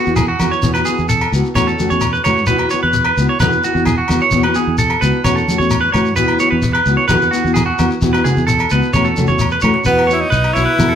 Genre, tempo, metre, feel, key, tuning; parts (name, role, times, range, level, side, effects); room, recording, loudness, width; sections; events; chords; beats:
highlife guitar band; 130 BPM; 4/4; straight; E major; A4 = 441 Hz
nylon-string guitar; accompaniment; 0.0-10.9 s; E3 to F#4; -20 LUFS; left 4 dB
clean electric guitar; arpeggios; 0.0-11.0 s; F#4 to C#5; -17 LUFS; right 3 dB; spring reverb
fingered electric bass; bass; 0.1-11.0 s; B1 to A2; -19 LUFS; right 1 dB
shekere; percussion; 0.1-10.9 s; -23 LUFS; left 3 dB
cajon; drums; 0.2-10.9 s; -27 LUFS; equal
agogo bells; percussion; 0.2-10.9 s; -26 LUFS; left 7 dB
congas; percussion; 0.2-10.9 s; -22 LUFS; right 1 dB
edgy tenor saxophone; melody; 9.9-11.0 s; B3 to E4; -15 LUFS; equal
wet studio reverb, RT60 0.8 s; band playing live in one room; -12 LUFS; side -8 dB against mid
0.0-9.9 A section; 9.9-11.0 B section
drum fill 9.6
0.0 Bsus4/E; 0.6 Esus2; 1.6 F#m7/E; 2.5 Esus2; 3.4 Bsus4/E; 4.3 Esus2; 5.3 F#m7/E; 6.2 Esus2; 7.1 Bsus4/E; 8.0 Esus2; 8.9 F#m7/E; 9.9 Esus2
0.17 | 0.64 1.10 1.56 2.02 | 2.48 2.94 3.41 3.87 | 4.33 4.79 5.25 5.72 | 6.18 6.64 7.10 7.56 | 8.03 8.49 8.95 9.41 | 9.87 10.34 10.80